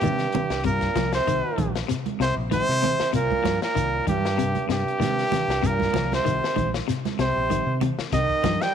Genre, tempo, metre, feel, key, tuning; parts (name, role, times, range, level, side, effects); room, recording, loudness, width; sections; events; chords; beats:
afrobeat; 96 BPM; 4/4; swing 55% on 16ths; C minor; A4 = 438 Hz
clear trumpet; melody; 0.0-8.7 s; G4 to G5; -25 LUFS; equal
trombone with bucket mute; second line; 0.0-8.7 s; G2 to G3; -30 LUFS; right 10 dB
semi-hollow electric guitar; arpeggios; 0.0-8.7 s; C3 to F3; -29 LUFS; left 10 dB; spring reverb
fingered electric bass; bass; 0.0-8.6 s; Bb1 to C3; -28 LUFS; equal
crunchy breakbeat drum kit; drums; 0.0-8.7 s; hi-hat, kick drum, snare drum; -32 LUFS; left 5 dB
congas; percussion; 0.0-8.6 s; -31 LUFS; right 10 dB
shekere; percussion; 0.1-8.6 s; -32 LUFS; right 5 dB
light reverb; 1960s-style stereo with parts hard left and right; -21 LUFS; side -8 dB against mid
0.0-8.7 A section
0.0 Cm7
0.03 | 0.65 1.27 1.90 2.52 | 3.14 3.77 4.39 5.01 | 5.63 6.25 6.88 7.50 | 8.12